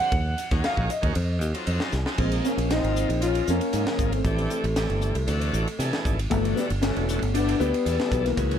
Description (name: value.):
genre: electric jazz fusion.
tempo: 116 BPM.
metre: 4/4.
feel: straight.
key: unclear.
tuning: A4 = 440 Hz.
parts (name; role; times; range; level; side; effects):
dark grand piano; melody; 0.0-8.6 s; A3 to F#5; -27 LUFS; left 2 dB; none.
bright tonewheel organ; accompaniment; 0.0-8.6 s; Cb3 to B#4; -32 LUFS; right 1 dB; slow rotary speaker, overdrive.
fingered electric bass; bass; 0.0-8.6 s; E1 to C3; -26 LUFS; equal; none.
crisp fusion drum kit; drums; 0.1-8.6 s; crash cymbal, hi-hat, kick drum, ride cymbal, snare drum; -30 LUFS; equal; none.
breathy trombone; second line; 2.2-8.6 s; E3 to Db4; -32 LUFS; left 2 dB; slapback echo.
room: little or no reverb.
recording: none.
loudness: -22 LUFS.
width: side -9 dB against mid.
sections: 0.0-2.2 A section; 2.2-8.6 B section.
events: drum fill 1.9.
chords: 0.1 D#m7; 1.2 F7b9; 2.2 Bbm11; 4.2 Am7; 5.3 D9; 6.3 G69.